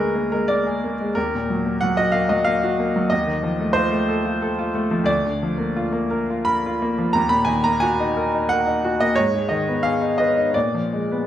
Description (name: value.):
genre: classical, romantic character piece for solo piano.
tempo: 90 BPM.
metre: 3/4.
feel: rubato.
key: Eb minor.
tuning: A4 = 438 Hz.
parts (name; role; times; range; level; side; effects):
bright baby grand piano; solo; 0.0-11.3 s; D2 to Cb6; -18 LUFS; equal; none.
room: wet recital hall reverb, RT60 1.7 s.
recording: none.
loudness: -18 LUFS.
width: side -11 dB against mid.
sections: 0.0-11.3 A section.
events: none.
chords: 0.0 Bb7/D; 1.2 Ebm; 3.1 F7/Eb; 5.1 Bb/D; 7.2 Ebm; 9.2 Abm; 10.5 Bb7b9.